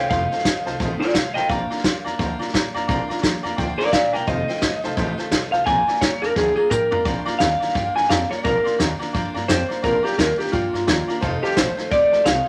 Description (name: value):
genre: rockabilly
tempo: 173 BPM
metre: 4/4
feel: swing 60% on 8ths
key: Bb major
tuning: A4 = 440 Hz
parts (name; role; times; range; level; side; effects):
- electric guitar through a small old amp; melody; 0.0-12.5 s; F4 to Ab5; -23 LUFS; equal; none
- bright upright piano; accompaniment; 0.0-12.5 s; C5 to C6; -31 LUFS; equal; none
- picked steel-string acoustic guitar; accompaniment; 0.0-12.5 s; F2 to F4; -33 LUFS; equal; none
- upright bass; bass; 0.0-12.4 s; E1 to G2; -32 LUFS; equal; none
- vintage drum kit; drums; 0.1-12.4 s; hi-hat, kick drum, snare drum, toms; -26 LUFS; equal; none
room: light reverb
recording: none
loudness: -21 LUFS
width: mono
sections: 0.0-7.1 A section; 7.1-12.5 B section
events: drum fill 6.4-7.1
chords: 0.0 F7; 1.5 Bb; 4.3 F7; 5.7 Bb; 11.2 F7